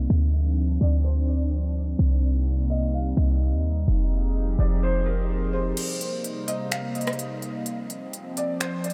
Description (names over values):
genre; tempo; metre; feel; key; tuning
hip hop, atmospheric cloud-rap; 127 BPM; 4/4; half-time; C minor; A4 = 442 Hz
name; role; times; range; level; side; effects
felt-muted upright piano; melody; 0.0-8.9 s; Bb4 to F5; -36 LUFS; equal; lush chorus, diffuse ambient delay
hollow soft pad; sustained chords; 0.0-8.9 s; C3 to Ab4; -33 LUFS; equal; chorus
clean 808-style bass; bass; 0.0-5.7 s; F1 to Eb2; -24 LUFS; equal; none
trap drum kit; drums; 5.8-8.9 s; crash cymbal, finger snaps, hi-hat, rim click; -34 LUFS; equal; overdrive
room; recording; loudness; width
light reverb; low-pass filter; -25 LUFS; mono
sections
0.0-5.8 A section; 5.8-8.9 B section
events
filter sweep 0.0-5.8; break 5.8-8.9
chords
0.1 Dm7; 2.0 Cm7; 3.9 Fm9; 5.8 Cm7; 7.7 Dm7/F